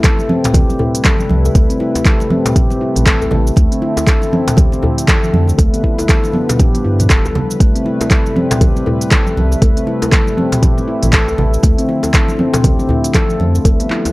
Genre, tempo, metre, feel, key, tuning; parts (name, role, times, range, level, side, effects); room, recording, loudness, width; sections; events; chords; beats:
afro house; 119 BPM; 4/4; swing 60% on 16ths; A minor; A4 = 440 Hz
warm analog pad; sustained chords; 0.0-14.1 s; C3 to B4; -21 LUFS; equal; chorus, sidechain pumping
handpan; arpeggios; 0.0-14.1 s; A3 to A4; -18 LUFS; left 1 dB; sidechain pumping, tape echo
deep house drum kit; drums; 0.0-14.1 s; handclaps, hi-hat, shaker, toms; -19 LUFS; equal
electronic kick drum; drums; 0.0-13.8 s; -12 LUFS; equal
congas; percussion; 0.1-14.0 s; -21 LUFS; right 1 dB
djembe; percussion; 0.5-14.1 s; -22 LUFS; left 1 dB
warm sub bass; bass; 1.3-13.8 s; F1 to G2; -15 LUFS; equal; tube saturation, sidechain pumping
little or no reverb; dry, gritty hardware recording; -11 LUFS; side -20 dB against mid
0.0-14.1 A section
0.0 Am9; 3.6 Dm9; 5.6 G7; 7.6 Am9; 11.6 Dm9
0.04 0.54 1.05 | 1.55 2.06 2.56 3.06 | 3.57 4.07 4.58 5.08 | 5.58 6.09 6.59 7.10 | 7.60 8.11 8.61 9.12 | 9.62 10.12 10.63 11.13 | 11.64 12.14 12.64 13.15 | 13.65